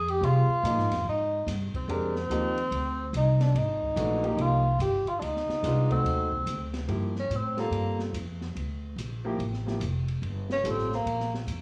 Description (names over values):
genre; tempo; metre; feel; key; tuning
modal jazz; 144 BPM; 4/4; swing 64% on 8ths; F dorian, G dorian from 6.9 s; A4 = 435 Hz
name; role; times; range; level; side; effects
mellow tenor saxophone; melody; 0.0-8.0, 10.5-11.3 s; Bb3 to Ab4; -31 LUFS; equal; none
upright bass; bass; 0.0-11.6 s; F1 to C3; -32 LUFS; equal; none
open jazz drum kit; drums; 0.1-11.6 s; hi-hat, kick drum, ride cymbal, snare drum; -42 LUFS; equal; none
clear grand piano; accompaniment; 0.2-10.9 s; E3 to Bb4; -35 LUFS; equal; none
room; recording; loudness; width
light reverb; worn, warbling old tape, cassette tape, warbly pitch drift, small room reverb; -28 LUFS; mono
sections
0.0-6.9 A section; 6.9-11.6 B section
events
tenor saxophone solo 6.9-11.6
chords
0.0 Fm9; 5.2 D7b9; 6.9 Gm9